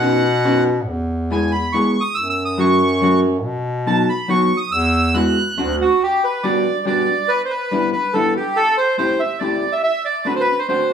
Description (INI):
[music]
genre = musette waltz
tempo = 141 BPM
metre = 3/4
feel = straight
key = E major, G major from 6.0 s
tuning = A4 = 439 Hz
[part]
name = bandoneon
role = melody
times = 0.0-10.9 s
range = F#4 to F#6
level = -18 LUFS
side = right 1 dB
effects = none
[part]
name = vintage hollow-body jazz guitar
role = accompaniment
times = 0.0-10.9 s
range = F#3 to G#4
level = -20 LUFS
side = left 1 dB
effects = none
[part]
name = warm bass clarinet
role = bass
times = 0.0-5.9 s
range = D2 to B2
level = -20 LUFS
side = equal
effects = none
[sound]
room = wet large studio reverb, RT60 0.9 s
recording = band playing live in one room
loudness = -16 LUFS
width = side -7 dB against mid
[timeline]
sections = 0.0-6.0 A section; 6.0-10.9 B section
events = none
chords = 0.0 Badd9; 0.9 E; 2.2 F#m; 3.5 B; 4.7 Eadd9; 5.6 D7; 6.0 Gmaj7; 7.3 Em7; 8.6 Am7; 9.8 D7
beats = 0.02 0.45 | 0.89 1.32 1.75 | 2.17 2.60 3.03 | 3.45 3.88 4.30 | 4.73 5.15 5.58 | 6.02 6.45 6.87 | 7.29 7.72 8.14 | 8.57 8.99 9.42 | 9.84 10.27 10.70